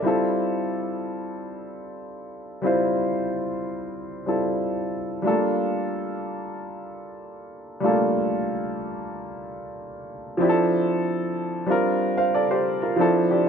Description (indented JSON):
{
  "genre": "soul",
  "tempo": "93 BPM",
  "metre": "4/4",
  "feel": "straight",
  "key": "F major",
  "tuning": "A4 = 439 Hz",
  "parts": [
    { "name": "warm grand piano", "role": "solo", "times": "0.0-13.5 s", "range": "F3 to F5", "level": "-23 LUFS", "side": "equal", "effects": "none" }
  ],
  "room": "moderate stone room reverb, RT60 1.1 s",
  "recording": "band playing live in one room",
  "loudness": "-22 LUFS",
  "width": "side -7 dB against mid",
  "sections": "0.0-10.4 A section; 10.4-13.5 B section",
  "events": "none",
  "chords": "0.1 Fmaj9; 5.2 Gm9; 10.4 Dm9; 11.7 Bb6; 13.0 Dm9",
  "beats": "| 0.05 0.70 1.35 2.00 | 2.65 3.30 3.95 4.60 | 5.24 5.89 6.54 7.19 | 7.83 8.48 9.12 9.77 | 10.41 11.06 11.70 12.34 | 12.98"
}